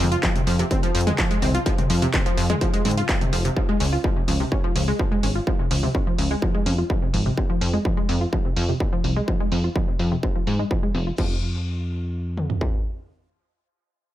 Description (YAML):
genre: melodic techno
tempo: 126 BPM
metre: 4/4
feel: straight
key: F minor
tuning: A4 = 440 Hz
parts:
  - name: wide unison pluck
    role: arpeggios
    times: 0.0-11.4 s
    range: C3 to F4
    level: -26 LUFS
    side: equal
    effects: sidechain pumping, dub echo
  - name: plucky analog bass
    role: bass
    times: 0.0-12.6 s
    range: F1 to Ab2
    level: -23 LUFS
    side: equal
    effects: tube saturation, sidechain pumping
  - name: techno drum kit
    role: drums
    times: 0.1-11.3 s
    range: crash cymbal, handclaps, hi-hat, toms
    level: -28 LUFS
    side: left 1 dB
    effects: low-pass filter on hats, low-pass filter on toms, low-pass filter on snare, low-pass filter on cymbals, low-pass filter on room
  - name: techno drum kit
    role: drums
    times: 0.2-12.7 s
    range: kick drum, toms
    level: -24 LUFS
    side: equal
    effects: distortion
room: little or no reverb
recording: none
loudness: -20 LUFS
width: side -13 dB against mid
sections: 0.0-3.6 A section; 3.6-11.2 B section; 11.2-14.1 C section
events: drop 0.0-3.6; filter sweep on synth pluck 3.6-11.2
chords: 0.0 Fm; 3.6 Db; 7.4 Fm; 11.2 N.C.